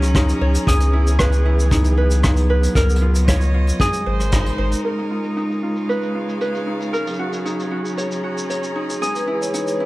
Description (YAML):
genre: folktronica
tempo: 115 BPM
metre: 4/4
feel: straight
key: unclear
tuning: A4 = 436 Hz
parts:
  - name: clear string quartet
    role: sustained chords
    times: 0.0-9.9 s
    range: Db2 to Bb5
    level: -24 LUFS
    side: equal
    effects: none
  - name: ukulele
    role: arpeggios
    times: 0.0-9.9 s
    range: Eb4 to Db5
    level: -23 LUFS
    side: equal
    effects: low-pass filter, tape echo
  - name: warm sub bass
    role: bass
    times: 0.0-4.7 s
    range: Ab1 to Db2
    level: -16 LUFS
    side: equal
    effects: none
  - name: vintage brush drum kit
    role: drums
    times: 0.0-9.8 s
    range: hi-hat, rim click, shaker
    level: -28 LUFS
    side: equal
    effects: low-pass filter on hats, low-pass filter on snare, low-pass filter on perc, low-pass filter on room
  - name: kick drum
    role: drums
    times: 0.1-4.4 s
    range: none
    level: -21 LUFS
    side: equal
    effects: none
  - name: vibraphone with medium hard mallets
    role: second line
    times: 9.1-9.9 s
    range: B4 to Db5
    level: -22 LUFS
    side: left 1 dB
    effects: none
room: light reverb, small room ambience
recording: dark, warm production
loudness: -17 LUFS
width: side -19 dB against mid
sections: 0.0-4.8 A section; 4.8-9.9 B section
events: band accent 4.3; filter sweep on drum 4.8-9.9; filter sweep on ukulele 4.8-9.9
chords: 0.0 Gb6/Db; 0.7 Emaj7/Db; 2.8 Cbmaj9#11/Db; 3.8 Ab7; 4.8 Db13; 6.9 Gb6/Db; 9.0 Emaj7/Db